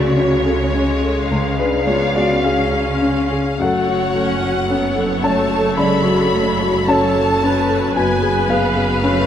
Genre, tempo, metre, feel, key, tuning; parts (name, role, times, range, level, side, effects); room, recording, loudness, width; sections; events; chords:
classical, romantic movement for piano and orchestra; 50-57 BPM; 4/4; rubato; F# minor; A4 = 441 Hz
rich symphonic violin section; melody; 0.0-9.3 s; B4 to E#5; -26 LUFS; left 2 dB
warm grand piano; melody; 0.0-9.3 s; C#2 to B5; -18 LUFS; left 2 dB
rich symphonic violin section; second line; 0.0-9.3 s; B4 to B5; -24 LUFS; left 1 dB
clear symphonic viola section; accompaniment; 0.0-9.3 s; F#3 to B4; -23 LUFS; right 1 dB
rich studio double bass section; bass; 0.0-9.3 s; F#1 to C#2; -25 LUFS; right 2 dB
rich symphonic cello section; bass; 0.0-9.3 s; F#2 to C#3; -24 LUFS; right 3 dB
wet scoring stage reverb, RT60 1.8 s; -14 LUFS; side -9 dB against mid
0.0-9.3 A section
0.0 F#m/C#; 1.3 C#; 3.6 F#m; 8.0 C#7/F# (rootless)